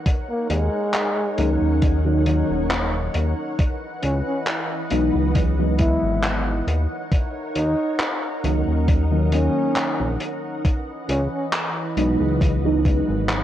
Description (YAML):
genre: vaporwave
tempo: 68 BPM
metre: 4/4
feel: swing 53% on 16ths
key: unclear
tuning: A4 = 437 Hz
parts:
  - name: soft string machine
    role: sustained chords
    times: 0.0-13.4 s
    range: E3 to F#5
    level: -29 LUFS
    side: left 1 dB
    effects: ensemble chorus
  - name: electronic kick drum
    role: drums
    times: 0.1-13.0 s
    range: none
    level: -20 LUFS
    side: equal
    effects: overdrive
  - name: vintage drum kit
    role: drums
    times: 0.1-13.4 s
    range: handclaps, hi-hat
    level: -26 LUFS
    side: equal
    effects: gated reverb
  - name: breathy flugelhorn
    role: melody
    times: 0.3-11.5 s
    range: G#3 to E4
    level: -27 LUFS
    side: equal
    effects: vintage 12-bit sampler grit, tape echo
  - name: chorused synth bass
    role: bass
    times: 0.5-13.4 s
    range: D#1 to D#2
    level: -22 LUFS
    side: equal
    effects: none
  - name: mellow FM electric piano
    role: accompaniment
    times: 1.4-13.4 s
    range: D#3 to D#5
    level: -23 LUFS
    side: equal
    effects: phaser, analog chorus, cassette tape, tape echo
room: moderate concert hall reverb, RT60 2.1 s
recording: cassette tape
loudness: -19 LUFS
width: side -12 dB against mid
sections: 0.0-13.4 A section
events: none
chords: 0.0 D#m7; 3.6 C#m11; 6.7 D#m7; 10.6 C#m11